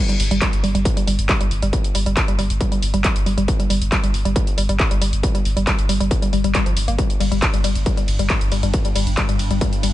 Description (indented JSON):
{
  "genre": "driving peak-time techno",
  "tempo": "137 BPM",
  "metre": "4/4",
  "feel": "straight",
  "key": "unclear",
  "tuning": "A4 = 441 Hz",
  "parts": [
    { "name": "woody wave-folded pluck", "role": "riff", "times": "0.1-9.9 s", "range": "F3 to Bb3", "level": "-24 LUFS", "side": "equal", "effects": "chorus, overdrive, sidechain pumping, ping-pong delay" },
    { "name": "techno drum kit", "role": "drums", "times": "0.1-9.9 s", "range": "handclaps, hi-hat, ride cymbal", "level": "-24 LUFS", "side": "equal", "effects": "none" },
    { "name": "saturated sub bass", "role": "bass", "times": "0.2-9.9 s", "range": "G1", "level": "-22 LUFS", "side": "equal", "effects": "sidechain pumping, low-pass filter" },
    { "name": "electronic kick drum", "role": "drums", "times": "0.4-9.7 s", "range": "none", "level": "-20 LUFS", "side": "equal", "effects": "distortion" },
    { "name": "swarming drone", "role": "drone", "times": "7.8-9.9 s", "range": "G2", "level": "-28 LUFS", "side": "right 1 dB", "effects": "built-in reverb, sidechain pumping" }
  ],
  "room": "little or no reverb",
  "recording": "nothing above 10.4 kHz",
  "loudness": "-16 LUFS",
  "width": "side -14 dB against mid",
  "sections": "0.0-9.9 A section",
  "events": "none",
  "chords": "none"
}